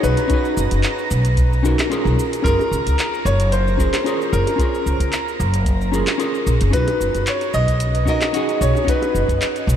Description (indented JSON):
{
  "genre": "sunset chillout",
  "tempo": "112 BPM",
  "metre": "4/4",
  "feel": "swing 54% on 16ths",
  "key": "B lydian",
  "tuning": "A4 = 440 Hz",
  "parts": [
    { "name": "bright concert grand piano", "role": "melody", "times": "0.0-9.6 s", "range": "A#4 to D#5", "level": "-23 LUFS", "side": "equal", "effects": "diffuse ambient delay, shimmer reverb" },
    { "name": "hollow-body jazz guitar", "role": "accompaniment", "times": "0.0-9.8 s", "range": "C#4 to B4", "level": "-23 LUFS", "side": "left 1 dB", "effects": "auto-pan, diffuse ambient delay, shimmer reverb" },
    { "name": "upright bass", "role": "bass", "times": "0.0-9.8 s", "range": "F#1 to C#2", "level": "-19 LUFS", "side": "equal", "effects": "none" },
    { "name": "smooth R&B drum kit", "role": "drums", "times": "0.0-9.8 s", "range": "cabasa, handclaps, hi-hat", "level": "-28 LUFS", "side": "equal", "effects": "none" },
    { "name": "twinkling granular texture", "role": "texture", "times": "0.0-6.7 s", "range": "A#5", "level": "-33 LUFS", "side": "right 3 dB", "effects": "built-in reverb, lush chorus, shimmer reverb" },
    { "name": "bongos", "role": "percussion", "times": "0.2-9.1 s", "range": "none", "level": "-35 LUFS", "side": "right 2 dB", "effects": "none" },
    { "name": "electronic kick drum", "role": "drums", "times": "0.3-9.4 s", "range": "none", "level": "-20 LUFS", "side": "equal", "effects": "overdrive" }
  ],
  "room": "moderate huge ambient reverb, RT60 8.0 s",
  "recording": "dreamy mix soaked in reverb",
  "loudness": "-16 LUFS",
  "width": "side -9 dB against mid",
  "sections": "0.0-6.7 A section; 6.7-9.8 A section",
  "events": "kick drops out 6.2-6.7",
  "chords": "0.0 Bmaj9; 2.2 F#maj9; 6.7 Badd9"
}